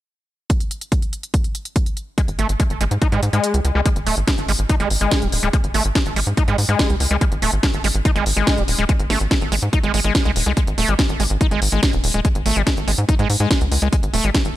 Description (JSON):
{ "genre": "psychedelic trance", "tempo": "143 BPM", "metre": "4/4", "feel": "straight", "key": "unclear", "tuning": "A4 = 440 Hz", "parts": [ { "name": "electronic kick drum", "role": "drums", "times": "0.5-14.4 s", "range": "none", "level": "-19 LUFS", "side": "equal", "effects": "overdrive" }, { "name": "techno drum kit", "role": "drums", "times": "0.5-14.5 s", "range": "hi-hat, snare drum", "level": "-23 LUFS", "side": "equal", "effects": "overdrive" }, { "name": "screaming distorted acid line", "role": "riff", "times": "2.2-14.4 s", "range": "G3 to Eb4", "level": "-22 LUFS", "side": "moving between left 3 dB and right 4 dB", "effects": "distortion, chorus, auto-pan, sidechain pumping, digital delay" }, { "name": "tight sequencer bass", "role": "bass", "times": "2.3-14.5 s", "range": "Eb1 to Ab2", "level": "-20 LUFS", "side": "equal", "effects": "none" } ], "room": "digital ambience", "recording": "none", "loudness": "-16 LUFS", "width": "side -14 dB against mid", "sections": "0.5-3.9 A section; 3.9-14.6 B section", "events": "kick drops out 3.4-3.9", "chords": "0.5 Ab5" }